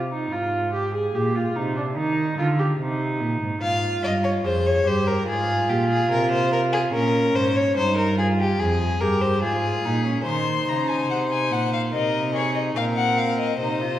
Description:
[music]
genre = classical, baroque-style fugue for string quartet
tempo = 72 BPM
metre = 4/4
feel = straight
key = F minor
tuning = A4 = 440 Hz
[part]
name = dark cello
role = bass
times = 0.0-14.0 s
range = F2 to Eb3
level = -25 LUFS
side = right 2 dB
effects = none
[part]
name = warm viola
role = accompaniment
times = 0.1-14.0 s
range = C4 to Ab4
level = -25 LUFS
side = right 1 dB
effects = none
[part]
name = rich violin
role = second line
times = 3.6-14.0 s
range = G4 to F5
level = -24 LUFS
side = left 3 dB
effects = none
[part]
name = rich violin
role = melody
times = 10.3-14.0 s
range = Db5 to C6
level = -25 LUFS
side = left 5 dB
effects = none
[sound]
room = wet recital hall reverb, RT60 1.8 s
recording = heard from further back in the room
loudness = -20 LUFS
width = side -12 dB against mid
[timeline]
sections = 0.0-10.3 A section; 10.3-14.0 B section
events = none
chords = 0.3 Fm/Ab; 3.6 Fm; 5.3 Fm/Ab; 6.9 Bbm; 8.6 Fm; 10.3 Cm7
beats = | 0.32 1.15 1.97 2.80 | 3.62 4.45 5.28 6.11 | 6.94 7.77 8.60 9.43 | 10.26 11.10 11.93 12.76 | 13.60

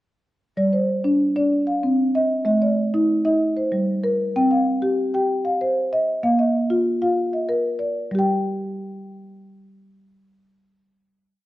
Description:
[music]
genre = southern african traditional, mbira-style interlocking cycle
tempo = 128 BPM (dotted quarters)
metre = 12/8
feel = straight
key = G equiheptatonic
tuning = A4 = 437 Hz
[part]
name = marimba with soft mallets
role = solo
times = 0.6-11.5 s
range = G3 to G5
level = -19 LUFS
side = equal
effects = none
[sound]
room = light reverb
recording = dark, warm production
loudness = -18 LUFS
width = side -16 dB against mid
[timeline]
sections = 0.6-8.1 A section; 8.1-11.5 final note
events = none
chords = 0.6 G5; 1.5 C; 2.5 A5; 3.4 Gm; 4.4 C; 6.2 Bb; 8.1 G5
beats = | 0.57 1.05 1.52 1.99 | 2.46 2.94 3.41 3.88 | 4.35 4.82 5.29 5.76 | 6.23 6.70 7.17 7.64 | 8.11 8.57 9.04 9.51 | 9.97 10.44 10.91 11.38

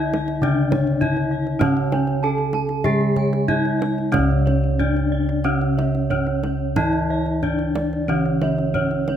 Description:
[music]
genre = Javanese gamelan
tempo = 91-105 BPM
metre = 4/4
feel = straight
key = C# pelog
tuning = A4 = 437 Hz
[part]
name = gamelan-type bronze metallophone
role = melody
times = 0.0-9.2 s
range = C#4 to A4-20c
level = -24 LUFS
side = left 2 dB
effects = none
[part]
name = gamelan-type bronze metallophone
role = accompaniment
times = 0.0-9.2 s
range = C#3 to G#3-30c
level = -24 LUFS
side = right 2 dB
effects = none
[part]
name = gamelan-type bossed gongs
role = arpeggios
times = 0.0-9.1 s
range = C#5 to A5-20c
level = -30 LUFS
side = left 2 dB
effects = none
[part]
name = gamelan-type bronze metallophone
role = arpeggios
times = 0.0-9.2 s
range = C#5 to A5-20c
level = -30 LUFS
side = right 7 dB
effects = none
[part]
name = kendang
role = percussion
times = 0.1-9.2 s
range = none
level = -29 LUFS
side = right 3 dB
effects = none
[part]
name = gamelan-type bossed gongs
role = bass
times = 0.4-9.2 s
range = C#2 to E4-30c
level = -24 LUFS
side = left 1 dB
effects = none
[sound]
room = light reverb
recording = close, detailed microphones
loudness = -18 LUFS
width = side -9 dB against mid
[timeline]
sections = 0.0-4.1 A section; 4.1-9.2 B section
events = none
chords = none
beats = 0.42 1.01 | 1.61 2.22 2.85 3.48 | 4.13 4.79 5.45 6.11 | 6.77 7.43 8.09 8.75

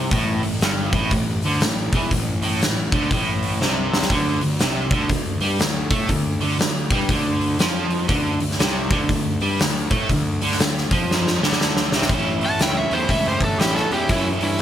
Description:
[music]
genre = blues rock power trio and southern rock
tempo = 120 BPM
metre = 4/4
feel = swing 63% on 8ths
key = A mixolydian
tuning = A4 = 440 Hz
[part]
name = biting overdriven guitar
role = riff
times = 0.0-14.6 s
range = G2 to E4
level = -23 LUFS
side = right 1 dB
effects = harmonic tremolo
[part]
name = fuzz picked electric bass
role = bass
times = 0.0-14.5 s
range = G1 to A2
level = -26 LUFS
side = equal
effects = overdrive
[part]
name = oversized low-tuned drum kit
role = drums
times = 0.1-14.6 s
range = hi-hat, kick drum, snare drum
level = -21 LUFS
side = equal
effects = none
[part]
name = biting lead guitar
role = second line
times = 12.4-14.6 s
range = C#4 to F#5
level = -32 LUFS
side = right 3 dB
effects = none
[part]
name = overdriven slide guitar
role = melody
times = 12.5-14.6 s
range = E4 to A5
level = -23 LUFS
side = equal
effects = none
[sound]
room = little or no reverb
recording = none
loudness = -18 LUFS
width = side -10 dB against mid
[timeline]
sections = 0.0-12.1 A section; 12.1-14.6 B section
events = drum fill 3.6-4.1, 11.1-12.1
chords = 0.0 A5; 4.1 D5; 12.1 A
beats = | 0.12 0.61 1.11 1.61 | 2.11 2.60 3.10 3.60 | 4.10 4.60 5.10 5.60 | 6.09 6.59 7.09 7.59 | 8.09 8.59 9.09 9.59 | 10.09 10.59 11.09 11.59 | 12.09 12.59 13.10 13.60 | 14.10 14.60

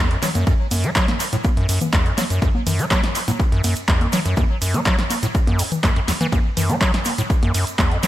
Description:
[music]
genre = acid house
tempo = 123 BPM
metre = 4/4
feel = straight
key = F# minor pentatonic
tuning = A4 = 439 Hz
[part]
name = acid bass, square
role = riff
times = 0.0-8.1 s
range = E2 to A3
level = -21 LUFS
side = equal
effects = overdrive, dub echo
[part]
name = punchy analog drum machine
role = drums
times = 0.1-8.1 s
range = congas, handclaps, hi-hat, ride cymbal, snare drum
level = -22 LUFS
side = equal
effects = overdrive, small room reverb, tape echo
[part]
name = tube shaker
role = percussion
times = 0.2-8.1 s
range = none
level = -34 LUFS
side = right 3 dB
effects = tape echo
[part]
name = electronic kick drum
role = drums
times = 0.5-7.9 s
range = none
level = -19 LUFS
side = equal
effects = overdrive, small room reverb
[sound]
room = light reverb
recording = echo-heavy mix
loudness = -17 LUFS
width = side -14 dB against mid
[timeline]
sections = 0.0-8.1 A section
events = none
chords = none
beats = | 0.47 0.96 1.45 1.93 | 2.42 2.91 3.40 3.88 | 4.37 4.86 5.35 5.84 | 6.32 6.81 7.30 7.79

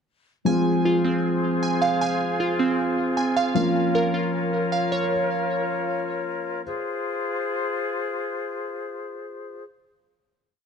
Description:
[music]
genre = hip hop, trap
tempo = 155 BPM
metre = 4/4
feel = half-time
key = F minor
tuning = A4 = 439 Hz
[part]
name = felt-muted upright piano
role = accompaniment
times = 0.5-6.6 s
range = F3 to F4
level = -25 LUFS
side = left 1 dB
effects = none
[part]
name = small flute group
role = sustained chords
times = 0.5-9.6 s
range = F4 to Db5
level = -28 LUFS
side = left 4 dB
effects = none
[part]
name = glassy digital keys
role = arpeggios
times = 0.5-6.1 s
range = C4 to Ab5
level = -24 LUFS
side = right 3 dB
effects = chorus, tape echo
[sound]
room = moderate recital hall reverb, RT60 1.5 s, small room ambience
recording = dark, warm production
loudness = -22 LUFS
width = side -6 dB against mid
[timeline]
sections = 0.5-6.7 breakdown; 6.7-9.8 final chord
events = none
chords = 0.5 Fm; 3.6 Bbm; 6.7 Fm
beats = | 0.46 0.85 1.24 1.62 | 2.01 2.40 2.79 3.17 | 3.56 3.95 4.33 4.72 | 5.11 5.50 5.88 6.27 | 6.66 7.04 7.43 7.82 | 8.21 8.59 8.98 9.37

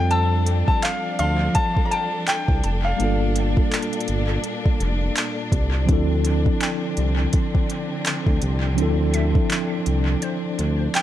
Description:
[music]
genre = contemporary R&B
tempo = 83 BPM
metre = 4/4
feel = swing 58% on 16ths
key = unclear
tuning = A4 = 443 Hz
[part]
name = clear baby grand piano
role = melody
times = 0.0-5.0, 11.0 s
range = F5 to Bb5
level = -25 LUFS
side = left 2 dB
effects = analog delay
[part]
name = mellow tine electric piano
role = accompaniment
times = 0.0-11.0 s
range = F3 to A4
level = -26 LUFS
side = equal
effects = medium stereo tremolo
[part]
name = clear studio string section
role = sustained chords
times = 0.0-11.0 s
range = Bb2 to A4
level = -29 LUFS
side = left 1 dB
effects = none
[part]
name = smooth synth bass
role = bass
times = 0.0-10.9 s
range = F1 to F2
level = -21 LUFS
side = equal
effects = none
[part]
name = smooth R&B drum kit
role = drums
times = 0.1-11.0 s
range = handclaps, hi-hat, kick drum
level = -22 LUFS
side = equal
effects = vintage 12-bit sampler grit, analog delay
[part]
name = glassy wavetable pluck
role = texture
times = 0.1-11.0 s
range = C5 to E6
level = -38 LUFS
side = equal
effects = chorus, analog delay
[sound]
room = little or no reverb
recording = echo-heavy mix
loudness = -19 LUFS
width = side -12 dB against mid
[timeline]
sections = 0.0-11.0 A section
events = none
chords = 0.0 Fmaj7; 3.0 Gm9; 5.9 Dm7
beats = | 0.10 0.83 1.55 2.27 | 3.00 3.72 4.44 5.17 | 5.89 6.61 7.33 8.06 | 8.78 9.50 10.23 10.95

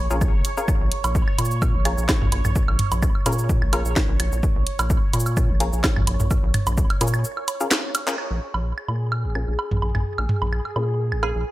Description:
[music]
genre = minimal techno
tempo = 128 BPM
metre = 4/4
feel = swing 54% on 16ths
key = Bb minor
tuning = A4 = 440 Hz
[part]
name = rubbery square bass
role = bass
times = 0.0-11.4 s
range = F1 to Bb2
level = -23 LUFS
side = equal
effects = sidechain pumping
[part]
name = bubbling stepped-filter texture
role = texture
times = 0.0-11.5 s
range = Ab4 to Db5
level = -32 LUFS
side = right 2 dB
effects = chorus, built-in reverb, sidechain pumping
[part]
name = wavetable chord stab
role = stabs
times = 0.1-11.3 s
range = Db4 to Bb4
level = -30 LUFS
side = left 2 dB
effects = tape echo
[part]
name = garage drum kit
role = drums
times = 0.1-8.2 s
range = handclaps, hi-hat, shaker, snare drum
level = -25 LUFS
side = equal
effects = low-pass filter on perc, studio reverb, low-pass filter on hats, low-pass filter on snare
[part]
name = electronic kick drum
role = drums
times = 0.2-6.9 s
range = none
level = -22 LUFS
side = equal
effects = studio reverb
[part]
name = electronic woodblock and toms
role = percussion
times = 0.2-11.3 s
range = none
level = -26 LUFS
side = right 2 dB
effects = studio reverb, tape echo
[part]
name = glassy wavetable pluck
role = melody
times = 11.2-11.5 s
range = Ab4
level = -28 LUFS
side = right 7 dB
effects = chorus, tape echo
[sound]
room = light reverb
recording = dry, gritty hardware recording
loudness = -19 LUFS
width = side -16 dB against mid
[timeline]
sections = 0.0-8.2 A section; 8.2-11.5 B section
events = break 7.2-8.2; drum fill 7.7-8.2; band accent 8.1; filter sweep on synth stab 8.2-11.5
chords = 0.0 Bbm7; 8.2 Bb7(no3)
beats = 0.21 | 0.68 1.15 1.62 2.09 | 2.56 3.03 3.49 3.96 | 4.43 4.90 5.37 5.84 | 6.31 6.78 7.24 7.71 | 8.18 8.65 9.12 9.59 | 10.06 10.53 10.99 11.46

